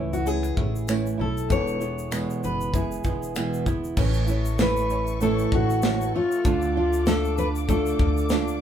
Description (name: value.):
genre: acoustic pop.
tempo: 97 BPM.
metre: 4/4.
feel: swing 55% on 16ths.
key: A major.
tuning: A4 = 440 Hz.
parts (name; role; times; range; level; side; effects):
fingerpicked steel-string acoustic guitar; melody; 0.0-8.6 s; E4 to C#5; -27 LUFS; left 3 dB; none.
nylon-string guitar; accompaniment; 0.0-8.6 s; E2 to F4; -27 LUFS; right 4 dB; none.
open-back banjo; arpeggios; 0.0-8.6 s; D3 to F4; -38 LUFS; right 4 dB; none.
upright bass; bass; 0.0-8.6 s; E1 to D2; -28 LUFS; left 1 dB; none.
modern studio drum kit; drums; 0.1-8.6 s; crash cymbal, finger snaps, kick drum, shaker, snare drum; -27 LUFS; equal; none.
tambourine; percussion; 0.9-8.5 s; none; -41 LUFS; left 6 dB; none.
dark studio string section; sustained chords; 4.0-8.6 s; A4 to D6; -37 LUFS; left 5 dB; none.
room: moderate studio ambience, RT60 0.4 s.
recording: band playing live in one room.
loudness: -22 LUFS.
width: side -9 dB against mid.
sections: 0.0-4.0 A section; 4.0-8.6 B section.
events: none.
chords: 0.0 A; 1.5 E; 4.0 A; 6.4 Dm.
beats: 0.26 0.88 | 1.50 2.12 2.74 3.36 | 3.98 4.59 5.21 5.83 | 6.45 7.07 7.68 8.30.